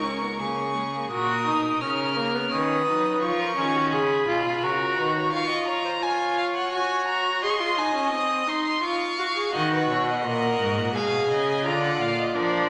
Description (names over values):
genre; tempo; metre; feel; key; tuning
classical, baroque-style fugue for string quartet; 85 BPM; 3/4; straight; F# major, Eb minor from 9.5 s; A4 = 440 Hz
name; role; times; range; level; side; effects
warm violin; melody; 0.0-12.7 s; D5 to E#6; -30 LUFS; equal; none
warm violin; second line; 0.0-12.7 s; E#4 to F5; -32 LUFS; equal; none
rich viola; accompaniment; 0.0-12.7 s; G#3 to Bb4; -28 LUFS; equal; none
rich cello; bass; 0.0-5.3, 9.5-12.7 s; C#2 to F#3; -32 LUFS; equal; none
room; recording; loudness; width
wet recital hall reverb, RT60 1.6 s; none; -24 LUFS; mono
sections
0.0-1.1 A section; 1.1-9.5 B section; 9.5-12.7 C section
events
none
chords
0.4 C#5; 1.1 F#/A#; 2.5 B/D#; 3.2 C#; 4.6 F#/C#; 5.3 C#/E#; 6.7 F#; 7.4 G#; 8.8 C#/E#; 9.5 Ebm; 11.0 Abm/Cb; 11.7 Bb